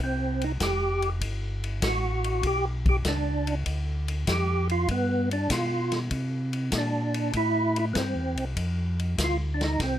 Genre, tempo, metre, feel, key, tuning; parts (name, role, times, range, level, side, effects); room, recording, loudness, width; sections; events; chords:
soul jazz organ trio; 98 BPM; 4/4; swing 69% on 8ths; A4 = 439 Hz
percussive tonewheel organ; melody; 0.0-10.0 s; B3 to G4; -27 LUFS; right 1 dB; slow rotary speaker, overdrive, chorus vibrato
mellow tonewheel organ; bass; 0.0-10.0 s; F1 to C3; -28 LUFS; equal; slow rotary speaker
vintage drum kit; drums; 0.4-10.0 s; hi-hat, kick drum, ride cymbal, snare drum; -31 LUFS; left 2 dB
light reverb; close, detailed microphones; -24 LUFS; side -11 dB against mid
0.0-10.0 A section
0.0 F5; 1.2 Gmaj7; 3.7 Dm; 4.9 G; 6.1 C6; 8.6 F5